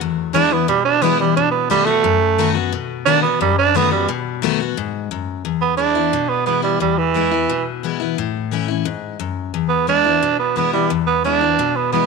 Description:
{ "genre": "rock", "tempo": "176 BPM", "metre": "4/4", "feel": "straight", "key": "E mixolydian from 5.4 s", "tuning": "A4 = 440 Hz", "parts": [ { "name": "picked steel-string acoustic guitar", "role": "accompaniment", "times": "0.0-12.1 s", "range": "E2 to F#4", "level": "-20 LUFS", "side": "left 11 dB", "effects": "none" }, { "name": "raspy tenor saxophone", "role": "melody", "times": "0.3-7.6, 9.7-12.1 s", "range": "E3 to D4", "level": "-16 LUFS", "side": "right 9 dB", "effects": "none" } ], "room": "moderate echo chamber reverb, RT60 1.9 s, small room ambience", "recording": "1960s-style stereo with parts hard left and right", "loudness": "-16 LUFS", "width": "side -4 dB against mid", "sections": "0.0-5.4 A section; 5.4-12.1 B section", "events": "none", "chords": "0.0 E; 1.4 B7; 5.4 E; 8.2 A; 9.5 E", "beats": "| 0.01 0.35 0.69 1.03 | 1.37 1.71 2.05 2.39 | 2.73 3.07 3.41 3.75 | 4.09 4.43 4.77 5.11 | 5.45 5.79 6.13 6.47 | 6.81 7.15 7.50 7.84 | 8.18 8.52 8.86 9.20 | 9.54 9.88 10.22 10.57 | 10.91 11.25 11.59 11.93" }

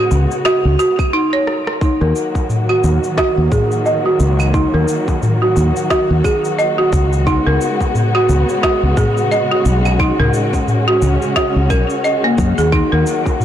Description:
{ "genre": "organic downtempo", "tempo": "88 BPM", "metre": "4/4", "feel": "swing 58% on 16ths", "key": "Eb minor", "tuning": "A4 = 440 Hz", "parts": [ { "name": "dark symphonic string section", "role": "sustained chords", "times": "0.0-13.4 s", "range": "Db3 to Gb4", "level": "-21 LUFS", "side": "left 1 dB", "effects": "vintage 12-bit sampler grit, sidechain pumping" }, { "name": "folk marimba with hard mallets", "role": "arpeggios", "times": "0.0-13.4 s", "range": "Bb3 to Eb5", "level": "-16 LUFS", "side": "right 1 dB", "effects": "low-pass filter, tape echo" }, { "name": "mellow fretless electric bass", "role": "bass", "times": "0.1-13.0 s", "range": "Cb2 to Gb2", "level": "-14 LUFS", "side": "equal", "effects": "tube saturation, wide subtle chorus, sidechain pumping" }, { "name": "electronic cabasa, snare drum, claves and rim click", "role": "drums", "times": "0.1-13.4 s", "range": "none", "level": "-26 LUFS", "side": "equal", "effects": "none" }, { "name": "darbuka", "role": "percussion", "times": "0.1-13.4 s", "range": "none", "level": "-21 LUFS", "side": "left 1 dB", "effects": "none" }, { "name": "electronic kick drum", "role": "drums", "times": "1.0-13.4 s", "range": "none", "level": "-19 LUFS", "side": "equal", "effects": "none" } ], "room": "light reverb", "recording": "blown-out, overdriven recording, overdrive", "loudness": "-12 LUFS", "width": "side -10 dB against mid", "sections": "0.0-1.8 A section; 1.8-13.4 A section", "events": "break 1.1-1.8; drum fill 1.5-1.8; filter sweep on marimba 1.8-13.4", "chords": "0.0 Db7sus4; 1.8 Ebm; 7.3 Db7sus4; 12.7 Ebm", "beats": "0.45 1.13 | 1.81 2.50 3.18 3.86 | 4.54 5.22 5.91 6.59 | 7.27 7.95 8.63 9.31 | 10.00 10.68 11.36 12.04 | 12.72 13.41" }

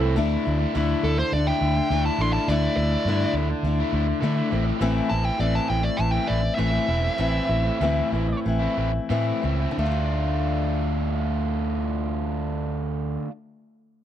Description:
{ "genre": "folk rock and heartland rock", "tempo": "87-103 BPM", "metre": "4/4", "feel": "straight", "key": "D minor", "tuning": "A4 = 444 Hz", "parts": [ { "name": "picked acoustic archtop guitar", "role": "accompaniment", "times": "0.0-13.4 s", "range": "A2 to F4", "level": "-27 LUFS", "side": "left 5 dB", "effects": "none" }, { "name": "overdriven electric guitar", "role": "riff", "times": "0.0-13.3 s", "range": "A2 to F4", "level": "-29 LUFS", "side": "right 3 dB", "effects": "none" }, { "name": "fingered electric bass", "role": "bass", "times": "0.0-13.2 s", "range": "E1 to D3", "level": "-25 LUFS", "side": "right 1 dB", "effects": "none" }, { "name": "dark smooth lead guitar", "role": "melody", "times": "1.0-8.4 s", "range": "A4 to C6", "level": "-27 LUFS", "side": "equal", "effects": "overdrive" } ], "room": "small room ambience", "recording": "dry, close 1970s-style studio recording", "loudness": "-21 LUFS", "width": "side -10 dB against mid", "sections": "0.2-9.8 A section; 9.8-12.5 B section", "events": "lead electric guitar solo 0.2-9.8; slowing down 4.8-9.8", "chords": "0.2 Dsus2; 4.5 Am; 9.8 Dm", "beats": "| 0.16 0.74 1.32 1.90 | 2.48 3.06 3.65 4.23 | 4.81 5.39 5.98 6.58 | 7.19 7.81 8.45 9.10 | 9.78 10.46 11.15 11.84" }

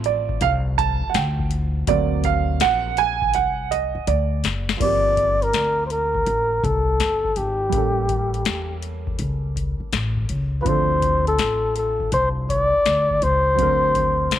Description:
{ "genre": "hip hop, jazz-hop", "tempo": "82 BPM", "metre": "4/4", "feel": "swing 66% on 16ths", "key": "G minor", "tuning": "A4 = 438 Hz", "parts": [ { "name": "warm upright piano", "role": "accompaniment", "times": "0.0-14.4 s", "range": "F3 to A5", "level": "-24 LUFS", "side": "right 11 dB", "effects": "none" }, { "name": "upright bass", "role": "bass", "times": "0.0-14.4 s", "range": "F#1 to E2", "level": "-24 LUFS", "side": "left 1 dB", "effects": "none" }, { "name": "booming analog drum machine", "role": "drums", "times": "0.0-14.4 s", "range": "crash cymbal, hi-hat, kick drum, snare drum", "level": "-27 LUFS", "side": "left 3 dB", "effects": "none" }, { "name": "breathy flugelhorn", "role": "melody", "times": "4.8-14.4 s", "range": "G4 to D5", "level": "-19 LUFS", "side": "left 1 dB", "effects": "none" } ], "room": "moderate spring reverb, RT60 2.4 s", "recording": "1960s-style stereo", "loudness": "-18 LUFS", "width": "side -11 dB against mid", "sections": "0.0-4.8 A section; 4.8-14.4 B section", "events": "upright piano solo 0.0-4.8; drum fill 3.3-4.8", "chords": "0.0 Dm7; 1.9 Daug7; 4.8 Gm11; 7.7 A7b9; 10.7 Dm7; 13.6 Daug7", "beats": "0.41 1.15 | 1.88 2.61 3.34 4.07 | 4.80 5.54 6.27 7.00 | 7.73 8.46 9.20 9.93 | 10.66 11.39 12.12 12.85 | 13.59 14.32" }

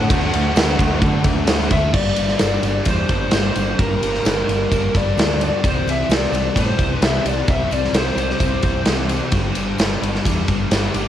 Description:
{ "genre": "rock, shoegaze and dream pop", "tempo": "130 BPM", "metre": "4/4", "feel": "straight", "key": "unclear", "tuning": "A4 = 440 Hz", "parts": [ { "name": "fuzz lead guitar", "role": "melody", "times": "0.0-8.8 s", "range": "Bb4 to F#5", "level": "-24 LUFS", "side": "left 1 dB", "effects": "distortion, tape echo" }, { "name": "crunchy overdriven guitar", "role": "riff", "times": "0.0-11.1 s", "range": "G2 to G4", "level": "-27 LUFS", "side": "right 10 dB", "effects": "reverse reverb" }, { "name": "overdriven semi-hollow guitar", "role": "riff", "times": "0.0-1.9 s", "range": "D3 to D4", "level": "-26 LUFS", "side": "right 1 dB", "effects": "none" }, { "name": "thick fuzz guitar", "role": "riff", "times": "0.0-11.1 s", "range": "G2 to D4", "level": "-24 LUFS", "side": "left 8 dB", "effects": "distortion, ensemble chorus" }, { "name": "growling fingered electric bass", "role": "bass", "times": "0.0-11.1 s", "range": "G1 to D3", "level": "-23 LUFS", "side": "equal", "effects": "overdrive" }, { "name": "big rock drum kit", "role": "drums", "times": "0.1-11.0 s", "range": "crash cymbal, kick drum, ride cymbal, snare drum", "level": "-19 LUFS", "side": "equal", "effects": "cassette tape" }, { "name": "tambourine", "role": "percussion", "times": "0.6-11.1 s", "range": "none", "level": "-40 LUFS", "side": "right 12 dB", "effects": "none" } ], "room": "light reverb", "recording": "home recording on cassette", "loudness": "-16 LUFS", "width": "side -11 dB against mid", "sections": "0.0-1.9 A section; 1.9-11.1 B section", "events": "none", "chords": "0.0 D; 1.9 Gm; 5.6 C; 9.3 G", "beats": "| 0.10 0.56 1.02 1.48 | 1.94 2.40 2.86 3.33 | 3.79 4.25 4.71 5.17 | 5.64 6.10 6.56 7.02 | 7.48 7.94 8.40 8.87 | 9.33 9.79 10.25 10.71" }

